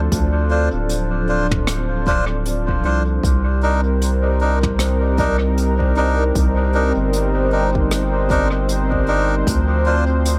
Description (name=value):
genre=ambient dub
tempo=77 BPM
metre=4/4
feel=swing 59% on 16ths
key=C dorian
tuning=A4 = 440 Hz
part: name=warm analog pad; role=sustained chords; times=0.0-10.4 s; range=F3 to D5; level=-24 LUFS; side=equal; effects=chorus, tremolo
part: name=round analog bass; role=bass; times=0.0-10.4 s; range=D1 to D2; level=-21 LUFS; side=equal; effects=none
part: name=electronic kick drum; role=drums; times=0.1-9.7 s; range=none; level=-24 LUFS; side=equal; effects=none
part: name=jazz brush drum kit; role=drums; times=0.1-10.4 s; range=hi-hat, rim click, toms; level=-31 LUFS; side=equal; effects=dub echo
part: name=melodica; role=stabs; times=0.5-10.0 s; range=D4 to C5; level=-25 LUFS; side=equal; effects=dub echo
room=light reverb, small room ambience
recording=echo-heavy mix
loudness=-18 LUFS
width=mono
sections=0.0-10.4 A section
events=none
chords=0.0 Dm7; 3.2 Cm9; 9.5 Dm7